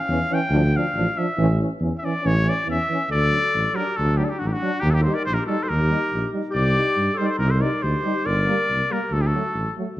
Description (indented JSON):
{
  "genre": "balkan folk",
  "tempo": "140 BPM",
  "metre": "2/4",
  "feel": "straight",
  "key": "D phrygian dominant from 3.1 s",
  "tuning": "A4 = 440 Hz",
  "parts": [
    { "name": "cornet with straight mute", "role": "melody", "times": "0.0-9.8 s", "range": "F#4 to G5", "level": "-24 LUFS", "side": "left 1 dB", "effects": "none" },
    { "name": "mellow euphonium", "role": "accompaniment", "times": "0.1-9.9 s", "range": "E3 to G3", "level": "-29 LUFS", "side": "right 4 dB", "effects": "none" },
    { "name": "warm French horn", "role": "accompaniment", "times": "0.1-9.9 s", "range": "A3 to Eb4", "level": "-30 LUFS", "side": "left 4 dB", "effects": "none" },
    { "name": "mellow tuba", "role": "bass", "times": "0.1-10.0 s", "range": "G1 to G2", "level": "-22 LUFS", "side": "equal", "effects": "none" },
    { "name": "dark clarinet", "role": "second line", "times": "3.1-9.8 s", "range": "D4 to Bb4", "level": "-29 LUFS", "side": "left 2 dB", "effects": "none" }
  ],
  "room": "moderate recital hall reverb, RT60 1.4 s",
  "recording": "dark, warm production",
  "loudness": "-19 LUFS",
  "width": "side -15 dB against mid",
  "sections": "0.0-3.1 A section; 3.1-10.0 B section",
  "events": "cornet solo 0.0-3.1",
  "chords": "0.0 A (rootless); 0.5 Dm; 1.4 A; 3.1 D; 4.8 Eb; 6.5 Cm; 8.3 Gm; 9.1 D"
}